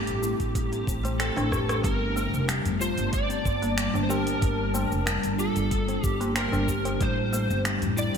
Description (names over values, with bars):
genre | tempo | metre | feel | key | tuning
organic downtempo | 93 BPM | 4/4 | straight | G minor | A4 = 440 Hz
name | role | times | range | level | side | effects
overdriven slide guitar | melody | 0.0-8.2 s | G4 to D5 | -31 LUFS | equal | ensemble chorus, ping-pong delay
ethereal airy pad | sustained chords | 0.0-8.2 s | G3 to A5 | -31 LUFS | left 2 dB | ensemble chorus, built-in reverb, sidechain pumping
upright bass | bass | 0.1-8.2 s | F1 to A1 | -29 LUFS | equal | none
afro-pop drum kit | drums | 0.1-8.2 s | finger snaps, hi-hat, rim click, shaker | -32 LUFS | equal | gated reverb
buzzing kalimba | arpeggios | 0.2-8.2 s | G3 to G4 | -32 LUFS | equal | ping-pong delay
electronic kick drum | drums | 0.4-7.1 s | none | -29 LUFS | equal | none
tabla | percussion | 0.9-7.9 s | none | -36 LUFS | left 1 dB | none
room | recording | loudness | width
light reverb | bright 1980s-style digital production | -24 LUFS | side -7 dB against mid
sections
0.0-1.8 A section; 1.8-8.2 B section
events
drum fill 1.4-1.8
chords
0.0 Am7; 1.8 Gm9; 7.0 Am7